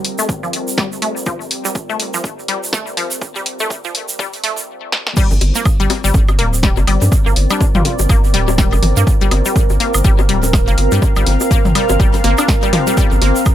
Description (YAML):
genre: minimal techno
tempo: 123 BPM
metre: 4/4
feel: swing 58% on 16ths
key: G minor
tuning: A4 = 439 Hz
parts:
  - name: house drum kit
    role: drums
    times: 0.0-13.3 s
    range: crash cymbal, hi-hat, snare drum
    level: -20 LUFS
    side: equal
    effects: none
  - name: deep dark ambient pad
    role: texture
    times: 0.0-13.5 s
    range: G3 to F5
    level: -22 LUFS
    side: right 1 dB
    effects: chorus, built-in reverb, sidechain pumping
  - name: resonant blip pluck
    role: riff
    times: 0.2-13.3 s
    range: F3 to D4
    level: -21 LUFS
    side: left 3 dB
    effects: chorus, sidechain pumping, ping-pong delay
  - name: tube shaker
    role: percussion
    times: 0.2-13.5 s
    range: none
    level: -25 LUFS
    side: right 4 dB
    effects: none
  - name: electronic kick drum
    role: drums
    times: 0.3-13.5 s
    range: none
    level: -15 LUFS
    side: equal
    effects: none
  - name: saturated sub bass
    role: bass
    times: 5.3-13.3 s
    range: D1 to G2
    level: -15 LUFS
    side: equal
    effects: sidechain pumping
  - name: electronic bongos, woodblock and toms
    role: percussion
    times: 5.3-13.5 s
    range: none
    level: -21 LUFS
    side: left 3 dB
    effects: digital delay
  - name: trumpet with bucket mute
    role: melody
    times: 7.5-7.9 s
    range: D4 to F4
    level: -25 LUFS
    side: equal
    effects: digital delay
room: little or no reverb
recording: high-pass filter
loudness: -13 LUFS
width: side -12 dB against mid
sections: 0.0-5.2 A section; 5.2-13.5 B section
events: build-up 0.0-5.2; filter sweep on synth pluck 0.0-5.2; filter sweep 0.0-5.2; drum fill 4.9; drop 5.2-13.5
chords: 0.0 Gm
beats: 0.29 0.78 | 1.26 1.75 2.24 2.73 | 3.22 3.70 4.19 4.68 | 5.17 5.66 6.14 6.63 | 7.12 7.61 8.09 8.58 | 9.07 9.56 10.04 10.53 | 11.02 11.51 12.00 12.48 | 12.97 13.46